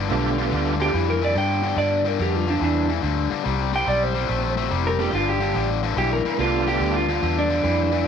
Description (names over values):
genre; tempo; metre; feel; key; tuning
electric blues shuffle; 143 BPM; 4/4; swing 67% on 8ths; G mixolydian; A4 = 439 Hz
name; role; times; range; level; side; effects
biting overdriven guitar; riff; 0.0-8.1 s; G2 to A3; -24 LUFS; left 10 dB; none
vintage muted fingered electric bass; bass; 0.0-8.0 s; F1 to G2; -25 LUFS; right 2 dB; none
bright tonewheel organ; accompaniment; 0.1-0.9, 5.0-8.1 s; A3 to G4; -28 LUFS; right 12 dB; slow rotary speaker, overdrive, chorus vibrato
electric guitar through a small old amp; melody; 0.8-8.1 s; D4 to G5; -23 LUFS; right 2 dB; none
room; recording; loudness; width
light reverb, digital ambience; 1960s-style stereo with parts hard left and right; -20 LUFS; side -7 dB against mid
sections
0.0-1.8 A section; 1.8-8.1 B section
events
clean electric guitar solo 1.8-8.1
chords
0.0 G9; 1.8 G5; 3.5 Csus2; 5.1 G9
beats
| 0.10 0.52 0.94 1.36 | 1.78 2.20 2.62 3.04 | 3.45 3.87 4.29 4.71 | 5.13 5.55 5.97 6.38 | 6.80 7.22 7.64 8.06